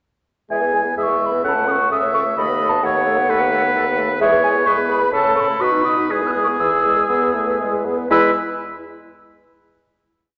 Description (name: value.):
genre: quick classical-period movement for wind quintet.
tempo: 118-132 BPM.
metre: 4/4.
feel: straight.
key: E major.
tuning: A4 = 440 Hz.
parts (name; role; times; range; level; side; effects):
wooden flute; melody; 0.5-8.4 s; E5 to F#6; -22 LUFS; equal; none.
warm oboe; second line; 0.5-8.3 s; G#4 to G#5; -23 LUFS; equal; none.
clear French horn; accompaniment; 0.5-8.3 s; E3 to D#4; -30 LUFS; equal; none.
warm clarinet; accompaniment; 0.5-8.3 s; D#4 to C#5; -27 LUFS; equal; none.
mellow bassoon; bass; 0.5-8.3 s; C#2 to C#3; -26 LUFS; equal; none.
room: wet scoring stage reverb, RT60 1.8 s.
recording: nothing above 7.9 kHz.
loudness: -18 LUFS.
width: mono.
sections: 0.5-8.1 A section; 8.1-10.1 final chord.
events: none.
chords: 0.5 E; 1.4 A/C#; 2.4 B7/D#; 4.2 E; 5.1 A/C#; 5.6 B; 6.1 E.